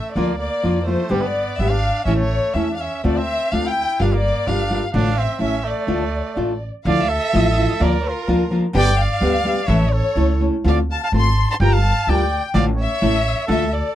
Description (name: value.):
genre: mexican folk, mariachi.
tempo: 126 BPM.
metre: 2/4.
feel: rubato.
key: D minor.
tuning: A4 = 442 Hz.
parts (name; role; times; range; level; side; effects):
rich chamber violin section; melody; 0.0-13.9 s; Bb4 to C6; -23 LUFS; left 2 dB; none.
bright trumpet; second line; 0.0-13.9 s; G3 to A5; -26 LUFS; right 6 dB; none.
nylon-string guitar; accompaniment; 0.2-13.6 s; G2 to Bb4; -20 LUFS; left 1 dB; none.
upright bass; bass; 0.2-13.8 s; G1 to F2; -21 LUFS; equal; none.
room: little or no reverb.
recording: dry, close 1970s-style studio recording.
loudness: -16 LUFS.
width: side -12 dB against mid.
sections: 0.0-6.9 A section; 6.9-13.9 A section.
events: none.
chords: 0.2 Bb/D; 1.1 G; 2.1 A; 3.0 Dm7; 4.0 Gm7; 4.9 Dm/A; 5.4 A; 5.9 Dm; 6.9 Dmadd9; 7.8 Bb/D; 8.7 G; 9.7 A; 10.6 Dm7; 11.6 Gm7; 12.5 Dm/A; 13.0 A.